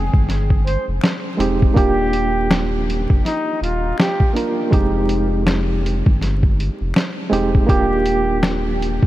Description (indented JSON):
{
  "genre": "lo-fi hip hop",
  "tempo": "81 BPM",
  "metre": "4/4",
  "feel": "swing 63% on 16ths",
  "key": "Eb major",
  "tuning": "A4 = 441 Hz",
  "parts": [
    { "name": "breathy flugelhorn", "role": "melody", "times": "0.0-8.6 s", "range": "Eb4 to C5", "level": "-24 LUFS", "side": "equal", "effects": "ping-pong delay" },
    { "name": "barky reed electric piano", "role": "accompaniment", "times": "0.0-9.1 s", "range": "Ab3 to G5", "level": "-21 LUFS", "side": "right 2 dB", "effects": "overdrive, fast tremolo" },
    { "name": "warm sub bass", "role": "bass", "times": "0.0-9.1 s", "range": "Eb1 to G1", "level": "-21 LUFS", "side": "equal", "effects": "none" },
    { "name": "lo-fi sampler-style drum kit", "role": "drums", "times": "0.1-9.1 s", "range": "hi-hat, kick drum, snare drum", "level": "-18 LUFS", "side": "equal", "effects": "none" },
    { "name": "finger snap", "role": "percussion", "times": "1.0-8.7 s", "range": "none", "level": "-40 LUFS", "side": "left 5 dB", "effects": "none" }
  ],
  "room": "moderate huge ambient reverb, RT60 5.2 s",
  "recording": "dreamy mix soaked in reverb, vinyl crackle",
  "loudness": "-15 LUFS",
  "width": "side -15 dB against mid",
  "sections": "0.0-9.1 A section",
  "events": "none",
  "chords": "0.0 Fm7; 1.8 Ebmaj7; 4.7 Fm7; 7.7 Ebmaj7",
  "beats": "0.28 1.02 | 1.76 2.50 3.24 3.98 | 4.72 5.46 6.20 6.94 | 7.68 8.42"
}